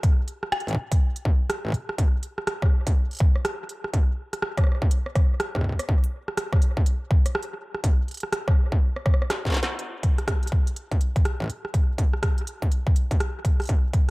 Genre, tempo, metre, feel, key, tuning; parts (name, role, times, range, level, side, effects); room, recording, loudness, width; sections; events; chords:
IDM; 123 BPM; 4/4; swing 62% on 16ths
electronic kick drum; drums; 0.0-14.1 s; -20 LUFS; equal; distortion
industrial drum kit; drums; 0.0-14.1 s; hi-hat, rim click, snare drum; -30 LUFS; right 1 dB; analog delay
digital ambience; echo-heavy mix; -22 LUFS; side -23 dB against mid
0.0-9.8 A section; 9.8-14.1 B section
drum fill 9.3-9.8; band accent 9.6